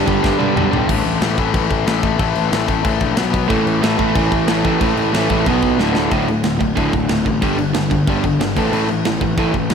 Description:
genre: punk rock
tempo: 184 BPM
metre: 4/4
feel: straight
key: unclear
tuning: A4 = 439 Hz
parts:
  - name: distorted electric guitar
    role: riff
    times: 0.0-9.7 s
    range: D2 to B3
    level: -19 LUFS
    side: left 9 dB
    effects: overdrive, slapback echo
  - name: overdriven electric guitar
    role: riff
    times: 0.0-0.9, 3.5-9.7 s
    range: D2 to B3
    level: -19 LUFS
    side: right 8 dB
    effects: slapback echo
  - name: fuzz picked electric bass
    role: bass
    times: 0.1-9.7 s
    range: D1 to G2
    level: -22 LUFS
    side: equal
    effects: overdrive
  - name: tight metal drum kit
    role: drums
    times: 0.1-9.7 s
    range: crash cymbal, kick drum, snare drum, toms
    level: -21 LUFS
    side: equal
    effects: none
room: moderate lush hall reverb, RT60 1.8 s, small room ambience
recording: big arena sound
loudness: -14 LUFS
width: side -6 dB against mid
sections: 0.9-6.1 A section; 6.1-9.7 B section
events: drum fill 0.2-0.9, 5.8-6.1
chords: 0.0 G; 0.9 A5; 3.2 B5; 3.5 A5; 5.5 B5; 5.8 D5; 7.4 G5; 8.6 A5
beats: 0.24 0.57 | 0.89 1.22 1.55 1.87 | 2.20 2.53 2.85 3.18 | 3.50 3.83 4.16 4.48 | 4.81 5.14 5.46 5.79 | 6.12 6.44 6.77 7.09 | 7.42 7.75 8.07 8.40 | 8.73 9.05 9.38 9.71

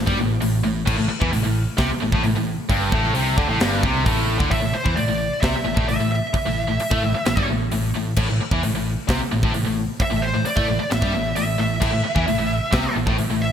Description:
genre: hard rock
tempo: 132 BPM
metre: 4/4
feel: straight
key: A minor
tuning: A4 = 440 Hz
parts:
  - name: biting overdriven guitar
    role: riff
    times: 0.0-4.5, 11.8-13.5 s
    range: G2 to G3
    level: -26 LUFS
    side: equal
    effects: none
  - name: scooped high-gain guitar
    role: riff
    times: 0.0-13.5 s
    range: G2 to A3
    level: -26 LUFS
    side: right 7 dB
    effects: distortion
  - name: tight distorted guitar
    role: riff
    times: 0.0-13.5 s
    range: G2 to A3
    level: -26 LUFS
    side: left 8 dB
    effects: distortion
  - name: picked electric bass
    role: bass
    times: 0.0-13.5 s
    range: G1 to A2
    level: -25 LUFS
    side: equal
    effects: none
  - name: tight metal drum kit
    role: drums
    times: 0.1-13.3 s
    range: crash cymbal, hi-hat, kick drum, snare drum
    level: -24 LUFS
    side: equal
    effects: none
  - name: high-gain lead guitar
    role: melody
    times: 4.5-13.5 s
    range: C5 to E5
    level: -25 LUFS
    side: right 1 dB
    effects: distortion, ping-pong delay
room: light reverb, studio ambience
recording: bright 1980s-style digital production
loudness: -18 LUFS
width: side -8 dB against mid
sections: 0.0-4.5 A section; 4.5-13.5 B section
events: lead electric guitar solo 4.5-13.5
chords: 0.0 Am; 4.5 A5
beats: 0.43 | 0.88 1.34 1.79 2.25 | 2.70 3.16 3.61 4.07 | 4.52 4.98 5.43 5.89 | 6.34 6.80 7.26 7.71 | 8.17 8.62 9.08 9.54 | 9.99 10.45 10.90 11.36 | 11.82 12.27 12.73 13.19

